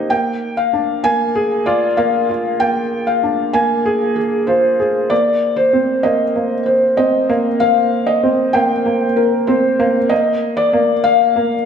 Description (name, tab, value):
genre	piano and strings electronica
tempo	96 BPM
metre	4/4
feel	straight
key	unclear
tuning	A4 = 441 Hz
part	felt-muted upright piano	melody	0.0-11.7 s	Ab4 to Ab5	-16 LUFS	left 1 dB	none
part	dark upright piano	riff	0.0-11.7 s	Bb3 to Ab4	-17 LUFS	right 1 dB	none
room	wet echo chamber reverb, RT60 1.8 s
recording	none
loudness	-13 LUFS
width	side -7 dB against mid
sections	0.0-11.7 A section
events	build-up 0.0-11.7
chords	0.1 Bb7; 5.1 Cm7; 10.1 N.C.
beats	| 0.11 0.74 1.36 1.99 | 2.61 3.24 3.86 4.49 | 5.11 5.74 6.36 6.99 | 7.61 8.24 8.86 9.49 | 10.11 10.74 11.36